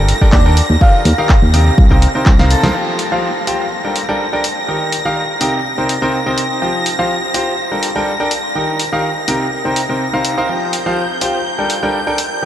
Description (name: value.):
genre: piano house.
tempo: 124 BPM.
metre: 4/4.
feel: swing 53% on 16ths.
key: F mixolydian.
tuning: A4 = 441 Hz.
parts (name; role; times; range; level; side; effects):
string machine, violins; sustained chords; 0.0-12.5 s; G6 to Bb6; -22 LUFS; equal; ensemble chorus, sidechain pumping.
bright grand piano; riff; 0.0-12.5 s; C3 to G5; -17 LUFS; equal; sidechain pumping, diffuse ambient delay.
solid FM bass; bass; 0.0-2.7 s; G1 to Eb2; -12 LUFS; equal; sidechain pumping.
house drum kit; drums; 0.1-12.3 s; handclaps, hi-hat, snare drum; -21 LUFS; equal; none.
electronic kick drum; drums; 0.2-2.4 s; none; -10 LUFS; equal; none.
airy dreamy lead; melody; 0.3-2.7 s; D5 to A5; -23 LUFS; equal; chorus, cassette tape, diffuse ambient delay.
room: moderate huge ambient reverb, RT60 8.9 s.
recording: dreamy mix soaked in reverb.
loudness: -12 LUFS.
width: side -11 dB against mid.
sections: 0.0-2.7 A section; 2.7-12.5 B section.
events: drum fill 2.3-2.7; band accent 2.6.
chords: 0.0 Gmadd9; 0.6 Eb; 1.8 Cm7; 2.7 Fsus2; 3.7 Gmadd9; 4.4 Eb; 5.7 Cm7; 6.6 Fsus2; 7.6 Gmadd9; 8.3 Cm7; 10.5 Fsus2; 11.5 Gmadd9.